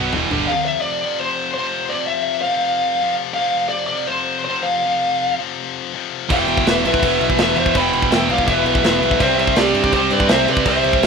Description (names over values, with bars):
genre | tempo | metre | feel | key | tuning
heavy metal | 165 BPM | 4/4 | straight | unclear | A4 = 443 Hz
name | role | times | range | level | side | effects
heavy high-gain guitar | riff | 0.0-11.1 s | E2 to C4 | -24 LUFS | left 13 dB | distortion
scooped high-gain guitar | riff | 0.0-0.5, 6.3-11.1 s | E2 to C4 | -20 LUFS | right 12 dB | distortion
thick fuzz guitar | riff | 0.0-0.5, 6.3-11.1 s | E2 to C4 | -25 LUFS | equal | distortion
modern bright picked electric bass | bass | 0.0-0.5, 6.3-11.1 s | E1 to C3 | -27 LUFS | equal | none
tight metal drum kit | drums | 0.1-0.4, 6.3-11.1 s | crash cymbal, kick drum, snare drum, toms | -21 LUFS | equal | none
high-gain lead guitar | melody | 0.5-11.1 s | C5 to B5 | -20 LUFS | left 2 dB | distortion
bluesy overdriven lead guitar | second line | 6.3-11.1 s | G4 to G5 | -22 LUFS | right 3 dB | distortion
room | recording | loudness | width
light reverb, small room ambience | rough home demo mix | -15 LUFS | side -5 dB against mid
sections
0.5-11.1 A section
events
drum fill 0.0-0.5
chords
0.5 F5; 6.3 Em; 9.2 C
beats
0.12 | 0.48 0.84 1.21 1.57 | 1.93 2.30 2.66 3.02 | 3.39 3.75 4.12 4.48 | 4.84 5.21 5.57 5.93 | 6.30 6.66 7.02 7.39 | 7.75 8.12 8.48 8.84 | 9.21 9.57 9.94 10.30 | 10.66 11.03